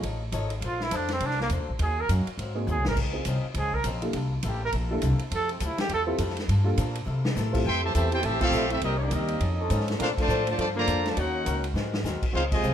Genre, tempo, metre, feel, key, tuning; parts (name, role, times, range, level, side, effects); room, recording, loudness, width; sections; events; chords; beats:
jazz, big band swing; 205 BPM; 4/4; swing 60% on 8ths; F major; A4 = 441 Hz
picked swing-style acoustic guitar; accompaniment; 0.0-12.7 s; G2 to C#5; -37 LUFS; left 5 dB
upright bass; bass; 0.0-12.7 s; G#1 to C3; -28 LUFS; equal
swinging big-band drum kit; drums; 0.0-12.7 s; crash cymbal, hi-hat, kick drum, ride cymbal, snare drum; -33 LUFS; equal
mellow trumpet; melody; 0.7-6.0 s; Bb3 to Bb4; -30 LUFS; right 2 dB
warm upright piano; accompaniment; 2.5-7.6 s; Bb3 to A4; -32 LUFS; right 1 dB
clear trumpet section; melody; 7.7-12.7 s; Bb3 to C6; -28 LUFS; equal
warm trombone section; second line; 7.7-12.7 s; C3 to G4; -30 LUFS; right 1 dB
warm trombone section; sustained chords; 8.5-11.6 s; F3 to Bb4; -35 LUFS; right 1 dB
light reverb; -24 LUFS; side -9 dB against mid
0.0-7.7 A section; 7.7-12.7 B section
trumpet solo 0.0-7.7; drum fill 2.7, 7.1, 11.8; band accent 8.4, 10.1, 12.5
0.0 F7alt; 0.6 Bbmaj9; 1.8 Ebm7; 2.4 Ab9; 3.0 Dbmaj9; 4.1 C13; 5.3 Fmaj9; 6.5 Gm7; 7.1 Fmaj9; 8.8 Cm7; 9.4 F7alt; 10.0 Bbmaj9; 11.2 Ebm7; 11.8 Ab9
0.03 0.32 | 0.61 0.91 1.20 1.50 | 1.79 2.08 2.38 2.67 | 2.96 3.26 3.55 3.85 | 4.14 4.43 4.72 5.02 | 5.31 5.61 5.90 6.19 | 6.48 6.78 7.07 7.36 | 7.66 7.95 8.24 8.54 | 8.83 9.12 9.41 9.71 | 10.00 10.29 10.59 10.88 | 11.17 11.46 11.76 12.05 | 12.34 12.63